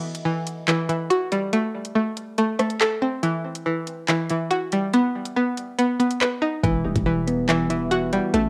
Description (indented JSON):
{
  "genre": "hip hop, drill",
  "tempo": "141 BPM",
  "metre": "4/4",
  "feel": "half-time",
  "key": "E minor",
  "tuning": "A4 = 439 Hz",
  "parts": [
    { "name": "string-like resonator pluck", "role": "arpeggios", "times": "0.0-8.5 s", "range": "E3 to B4", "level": "-24 LUFS", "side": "equal", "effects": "chorus, analog delay" },
    { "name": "drill drum kit", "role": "drums", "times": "0.1-8.4 s", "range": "handclaps, hi-hat, kick drum, rim click", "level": "-28 LUFS", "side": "equal", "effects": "overdrive, cassette tape" },
    { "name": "soft electric-piano-like synth keys", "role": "accompaniment", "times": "6.6-8.5 s", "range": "E3 to F#4", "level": "-28 LUFS", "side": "equal", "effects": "chorus" },
    { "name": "growling 808-style bass", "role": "bass", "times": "6.6-8.5 s", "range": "E1 to A1", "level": "-31 LUFS", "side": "equal", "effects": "none" }
  ],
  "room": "digital ambience",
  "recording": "home recording on cassette",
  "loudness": "-23 LUFS",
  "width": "mono",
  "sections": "0.0-8.5 A section",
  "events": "break 0.0-6.6",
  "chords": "0.0 Emadd9; 1.5 Am; 3.2 Emadd9; 4.9 B; 6.6 Emadd9"
}